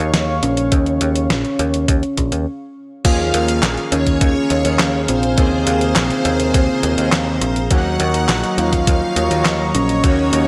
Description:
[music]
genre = synthwave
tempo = 103 BPM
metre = 4/4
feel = straight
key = unclear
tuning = A4 = 440 Hz
[part]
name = soft octave-layered synth lead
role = melody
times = 0.0-10.5 s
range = C4 to Gb4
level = -22 LUFS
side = equal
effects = chorus, tape echo
[part]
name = warm analog pad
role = sustained chords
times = 0.0-10.5 s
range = Gb3 to Db6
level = -27 LUFS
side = equal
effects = chorus, sidechain pumping
[part]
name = picked electric bass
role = bass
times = 0.0-10.5 s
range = Bb1 to Eb2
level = -22 LUFS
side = equal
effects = tube saturation
[part]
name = clean 12-bit digital drum machine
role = drums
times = 0.1-10.4 s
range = crash cymbal, handclaps, hi-hat, snare drum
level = -22 LUFS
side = equal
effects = gated reverb
[part]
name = electronic kick drum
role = drums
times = 0.7-10.2 s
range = none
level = -19 LUFS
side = equal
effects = none
[part]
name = string machine, violins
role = second line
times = 3.0-10.5 s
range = C5 to Gb5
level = -29 LUFS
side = equal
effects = ensemble chorus
[part]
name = analog synth brass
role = stabs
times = 3.0-10.5 s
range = Db3 to Ab4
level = -27 LUFS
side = equal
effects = chorus
[sound]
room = light reverb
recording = none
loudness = -17 LUFS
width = mono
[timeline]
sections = 0.0-3.0 A section; 3.0-10.5 B section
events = stop 2.5-3.0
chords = 0.0 Bbm7; 7.7 Ebm7

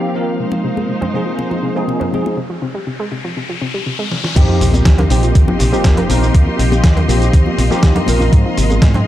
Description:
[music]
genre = nu-disco, nu disco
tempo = 121 BPM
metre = 4/4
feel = straight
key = Eb major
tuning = A4 = 442 Hz
[part]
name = bell-like tine electric piano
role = accompaniment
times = 0.0-9.0 s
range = F3 to Bb4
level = -19 LUFS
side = equal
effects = ensemble chorus, sidechain pumping, digital delay
[part]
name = clear studio string section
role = sustained chords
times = 0.0-9.1 s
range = Eb3 to C6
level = -24 LUFS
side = equal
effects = sidechain pumping, low-pass filter
[part]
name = analog pluck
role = arpeggios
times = 0.4-9.0 s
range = C3 to C4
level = -23 LUFS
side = left 1 dB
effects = chorus, sidechain pumping, digital delay
[part]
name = riser and sub drop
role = sound effects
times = 2.8-6.3 s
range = none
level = -22 LUFS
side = equal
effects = none
[part]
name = congas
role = percussion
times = 0.5-9.0 s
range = none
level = -23 LUFS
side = left 1 dB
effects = none
[part]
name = dusty soul sampler-style drum kit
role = drums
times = 4.1-9.0 s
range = crash cymbal, hi-hat, shaker, snare drum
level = -21 LUFS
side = equal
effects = low-pass filter on hats, studio reverb, low-pass filter on snare, low-pass filter on cymbals, low-pass filter on perc
[part]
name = deep dub fingered electric bass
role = bass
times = 4.4-9.0 s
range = Ab1 to Ab2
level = -15 LUFS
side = equal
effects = none
[part]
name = electronic kick drum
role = drums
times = 4.4-8.9 s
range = none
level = -11 LUFS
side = equal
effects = studio reverb
[sound]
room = light reverb, digital ambience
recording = dark, warm production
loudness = -12 LUFS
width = side -13 dB against mid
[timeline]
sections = 0.0-4.4 A section; 4.4-9.1 B section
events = filter sweep on string section 0.0-4.4; break 2.4-4.4; riser 2.8-4.4; drum fill 4.1; drop 4.4-9.1; impact 4.4-6.3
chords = 0.4 Ab6; 2.4 F5; 4.4 Eb69; 8.3 Ab6

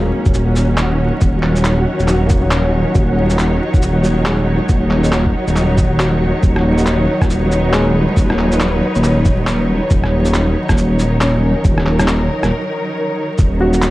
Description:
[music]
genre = future garage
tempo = 138 BPM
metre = 4/4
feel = swing 61% on 16ths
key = Eb minor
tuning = A4 = 440 Hz
[part]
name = warm upright piano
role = accompaniment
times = 0.0-13.9 s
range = Gb3 to Gb4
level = -24 LUFS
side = left 1 dB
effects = sidechain pumping, analog delay
[part]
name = clear symphonic string section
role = sustained chords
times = 0.0-13.9 s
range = Eb3 to Db5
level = -19 LUFS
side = equal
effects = vintage 12-bit sampler grit, sidechain pumping
[part]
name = dark detuned saw bass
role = bass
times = 0.0-13.9 s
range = Eb1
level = -15 LUFS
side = equal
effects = sidechain pumping
[part]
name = flickering grainy texture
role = texture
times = 0.0-13.9 s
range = Db4 to Gb5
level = -27 LUFS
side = left 1 dB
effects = built-in reverb
[part]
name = electronic kick drum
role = drums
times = 0.3-13.5 s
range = none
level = -14 LUFS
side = equal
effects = none
[part]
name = electronic shaker, handclaps and rim click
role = drums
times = 0.3-13.9 s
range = none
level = -23 LUFS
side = equal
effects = none
[sound]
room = light reverb, digital ambience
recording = vinyl crackle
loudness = -12 LUFS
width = side -17 dB against mid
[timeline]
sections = 0.0-13.4 A section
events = break 12.5-13.4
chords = 0.0 Ebm7; 6.4 Bsus2/Eb; 13.4 Ebm7

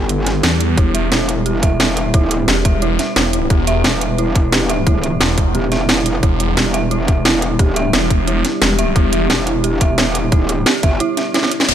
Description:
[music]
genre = dark technical drum and bass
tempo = 176 BPM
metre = 4/4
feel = straight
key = E minor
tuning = A4 = 441 Hz
[part]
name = deep dark ambient pad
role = sustained chords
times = 0.0-11.7 s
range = G3 to B4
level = -23 LUFS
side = equal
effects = chorus, built-in reverb, sidechain pumping
[part]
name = metallic wobble bass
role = bass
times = 0.0-11.0 s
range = E1 to G1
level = -19 LUFS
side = equal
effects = distortion, chorus
[part]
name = drum and bass drum kit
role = drums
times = 0.1-11.7 s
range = crash cymbal, hi-hat, snare drum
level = -17 LUFS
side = right 1 dB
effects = overdrive
[part]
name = phased detuned saw bass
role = bass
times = 0.4-9.3, 11.7 s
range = E1 to E2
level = -18 LUFS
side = equal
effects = phaser, overdrive
[part]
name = dark detuned synth bell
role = arpeggios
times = 0.8-11.7 s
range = E4 to E5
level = -21 LUFS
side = right 4 dB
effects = chorus, sidechain pumping, dub echo
[part]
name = electronic kick drum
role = drums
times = 0.8-10.9 s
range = none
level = -14 LUFS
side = equal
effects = overdrive
[part]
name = downlifter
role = sound effects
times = 11.7 s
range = none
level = -11 LUFS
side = left 2 dB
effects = none
[sound]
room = light reverb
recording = none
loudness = -13 LUFS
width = side -10 dB against mid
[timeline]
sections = 0.0-11.7 A section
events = drum fill 11.3-11.7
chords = 0.0 Em

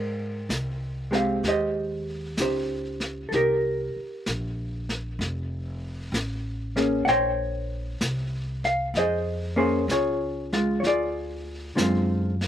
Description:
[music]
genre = jazz ballad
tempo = 64 BPM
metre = 4/4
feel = swing 67% on 8ths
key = unclear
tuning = A4 = 441 Hz
[part]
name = hollow-body jazz guitar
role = accompaniment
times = 0.0-12.4 s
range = D3 to G5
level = -24 LUFS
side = equal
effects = none
[part]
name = upright bass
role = bass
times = 0.0-12.5 s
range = F1 to Ab2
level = -31 LUFS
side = equal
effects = none
[part]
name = vintage brush drum kit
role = drums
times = 0.5-12.5 s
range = brushed snare drum, hi-hat, snare drum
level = -32 LUFS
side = equal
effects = none
[sound]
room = little or no reverb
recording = recorded outdoors, with no room sound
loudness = -24 LUFS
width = side -10 dB against mid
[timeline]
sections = 0.0-12.5 A section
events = none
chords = 0.0 Abmaj9; 3.3 Cm7; 5.2 F; 7.1 Bbm9; 10.8 Dm7b5

